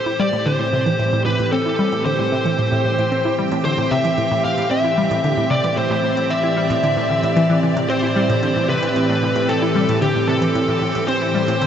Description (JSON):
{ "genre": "ambient, sequencer-driven space music", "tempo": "113 BPM", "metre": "4/4", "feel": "straight", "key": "A minor", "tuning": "A4 = 442 Hz", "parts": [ { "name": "smooth overdriven lead guitar", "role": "melody", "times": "0.0-11.7 s", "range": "G4 to F5", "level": "-20 LUFS", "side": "left 1 dB", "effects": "tape echo" }, { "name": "evolving wavetable pad", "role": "sustained chords", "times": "0.0-11.7 s", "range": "A2 to G5", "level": "-21 LUFS", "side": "right 1 dB", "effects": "ensemble chorus, built-in reverb" }, { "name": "analog pluck", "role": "riff", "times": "0.0-11.7 s", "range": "A2 to E4", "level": "-21 LUFS", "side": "equal", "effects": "chorus, tape echo" }, { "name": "bubbling stepped-filter texture", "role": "texture", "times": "7.2-11.7 s", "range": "none", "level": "barely audible", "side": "none", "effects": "none" }, { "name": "soft vintage rhythm box", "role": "percussion", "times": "0.3-11.7 s", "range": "hi-hat, toms", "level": "-38 LUFS", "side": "left 3 dB", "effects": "none" } ], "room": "wet huge ambient reverb, RT60 7.5 s", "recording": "nothing above 7.9 kHz", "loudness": "-16 LUFS", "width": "side -9 dB against mid", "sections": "0.0-11.7 A section", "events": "none", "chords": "0.0 Am7" }